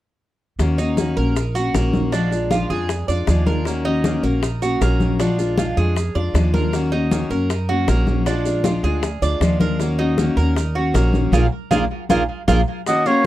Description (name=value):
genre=latin, Cuban son and guajira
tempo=156 BPM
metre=4/4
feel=straight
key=Eb minor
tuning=A4 = 439 Hz
part: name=picked steel-string acoustic guitar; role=accompaniment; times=0.6-13.3 s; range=Eb3 to Gb4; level=-22 LUFS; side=left 3 dB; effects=none
part: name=upright bass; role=bass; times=0.6-12.6 s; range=Bb1 to Gb2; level=-20 LUFS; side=right 1 dB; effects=none
part: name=bongos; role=percussion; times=0.6-13.2 s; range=none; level=-27 LUFS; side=left 6 dB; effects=none
part: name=congas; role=percussion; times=0.6-13.2 s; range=none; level=-24 LUFS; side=left 2 dB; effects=none
part: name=maracas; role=percussion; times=0.6-13.2 s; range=none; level=-37 LUFS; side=right 11 dB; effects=none
part: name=Cuban tres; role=arpeggios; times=0.8-13.3 s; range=D4 to D5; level=-24 LUFS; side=right 5 dB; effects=tape echo
part: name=trumpet with cup mute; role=melody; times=12.9-13.3 s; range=Db5 to Eb5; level=-17 LUFS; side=equal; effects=none
part: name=breathy bright jazz flute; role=second line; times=12.9-13.3 s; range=F5 to Gb5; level=-22 LUFS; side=right 8 dB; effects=none
room=little or no reverb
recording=dry, close 1970s-style studio recording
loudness=-17 LUFS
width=side -14 dB against mid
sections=0.6-12.9 A section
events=band accent 11.3-12.9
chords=0.6 Ebm7; 2.1 Bb7; 3.7 Ebm7; 5.2 Bb7; 6.7 Ebm7; 8.3 Bb7; 9.8 Ebm7; 11.3 Bb7